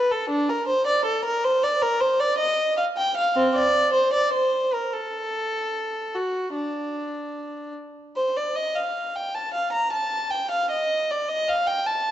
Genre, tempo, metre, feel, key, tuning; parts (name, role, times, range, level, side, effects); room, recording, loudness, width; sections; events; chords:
classical, baroque-style suite movement for unaccompanied violin; 76 BPM; 4/4; uneven beats, rubato; A4 = 440 Hz
warm violin; solo; 0.0-12.1 s; C4 to Bb5; -22 LUFS; equal
wet recital hall reverb, RT60 1.6 s; dark, warm production, nothing above 8.0 kHz; -21 LUFS; side -11 dB against mid
0.0-12.1 A section